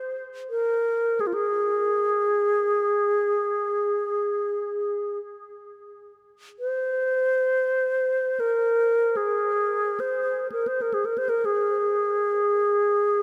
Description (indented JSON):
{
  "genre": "world meditative",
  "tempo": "free time",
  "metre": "none",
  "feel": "none",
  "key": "Ab major pentatonic",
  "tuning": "A4 = 436 Hz",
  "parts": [
    { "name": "bright alto flute", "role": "melody", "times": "0.0-13.2 s", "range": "F4 to C5", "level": "-25 LUFS", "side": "equal", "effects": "diffuse ambient delay" }
  ],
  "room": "wet huge ambient reverb, RT60 4.9 s",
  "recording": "none",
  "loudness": "-24 LUFS",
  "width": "mono",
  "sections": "0.0-13.2 A section",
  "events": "none",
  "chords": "none"
}